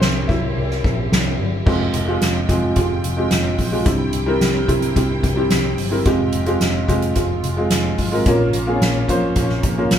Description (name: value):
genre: piano-driven pop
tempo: 109 BPM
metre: 4/4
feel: straight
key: F harmonic minor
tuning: A4 = 443 Hz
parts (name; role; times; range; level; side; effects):
- dark upright piano; accompaniment; 0.0-10.0 s; G2 to E5; -20 LUFS; equal; none
- rich studio string section; sustained chords; 0.0-10.0 s; Ab3 to G5; -31 LUFS; right 2 dB; none
- vintage muted picked electric bass; bass; 0.0-10.0 s; F1 to C2; -23 LUFS; equal; none
- soft-mallet drum kit; drums; 0.0-10.0 s; crash cymbal, hi-hat, kick drum, ride cymbal, snare drum; -20 LUFS; equal; none
room: moderate large studio reverb, RT60 0.8 s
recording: band playing live in one room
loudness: -16 LUFS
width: side -9 dB against mid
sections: 0.0-1.7 A section; 1.7-10.0 B section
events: upright piano solo 0.0-1.7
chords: 0.0 C; 1.7 Fmadd9; 3.9 C; 6.1 Fmadd9; 8.3 Bbm